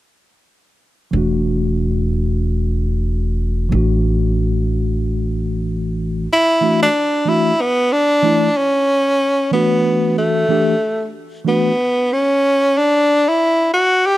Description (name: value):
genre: hip hop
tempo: 93 BPM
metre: 4/4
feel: swing 58% on 16ths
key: unclear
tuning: A4 = 440 Hz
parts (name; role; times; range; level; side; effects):
- mellow tine electric piano; accompaniment; 1.1-11.7 s; E3 to G4; -20 LUFS; equal; medium stereo tremolo
- upright bass; bass; 1.1-6.3 s; E1 to A1; -18 LUFS; equal; none
- breathy tenor saxophone; melody; 6.3-14.2 s; A3 to G4; -14 LUFS; equal; none
room: light reverb, small room ambience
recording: none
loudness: -14 LUFS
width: side -15 dB against mid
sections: 1.1-6.3 A section; 6.3-14.2 B section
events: none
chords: 1.1 Esus2; 3.7 Asus4; 6.3 Esus2; 8.9 Asus4; 11.5 D69